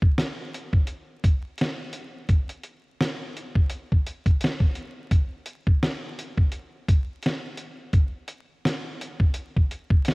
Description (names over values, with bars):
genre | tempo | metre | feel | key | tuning
hip hop | 85 BPM | 4/4 | swing 59% on 16ths | none | none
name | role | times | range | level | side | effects
dusty soul sampler-style drum kit | drums | 0.0-10.1 s | hi-hat, kick drum, snare drum | -22 LUFS | equal | cassette tape
room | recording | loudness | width
light reverb | home recording on cassette, vinyl crackle | -23 LUFS | side -28 dB against mid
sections
0.0-10.1 A section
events
none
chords
none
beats
0.17 0.87 1.58 | 2.29 2.99 3.70 4.40 | 5.11 5.82 6.52 7.23 | 7.93 8.64 9.35 10.05